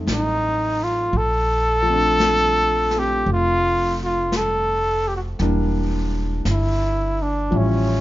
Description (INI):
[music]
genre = jazz ballad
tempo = 56 BPM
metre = 4/4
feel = swing 68% on 8ths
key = Bb major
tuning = A4 = 440 Hz
[part]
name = warm concert grand piano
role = accompaniment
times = 0.0-8.0 s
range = E3 to E4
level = -26 LUFS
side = left 1 dB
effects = none
[part]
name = upright bass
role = bass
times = 0.0-8.0 s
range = E1 to Bb1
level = -23 LUFS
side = equal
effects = none
[part]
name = breathy trumpet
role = melody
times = 0.1-8.0 s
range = C#4 to A4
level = -19 LUFS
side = equal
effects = none
[part]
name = jazz brush drum kit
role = drums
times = 0.1-8.0 s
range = brushed snare drum, hi-hat, snare drum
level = -31 LUFS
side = left 2 dB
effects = none
[sound]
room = light reverb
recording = nothing above 7.5 kHz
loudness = -18 LUFS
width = side -16 dB against mid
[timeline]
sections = 0.0-8.0 A section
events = none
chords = 0.0 F7b9; 1.1 Bbmaj7; 5.4 Em7b5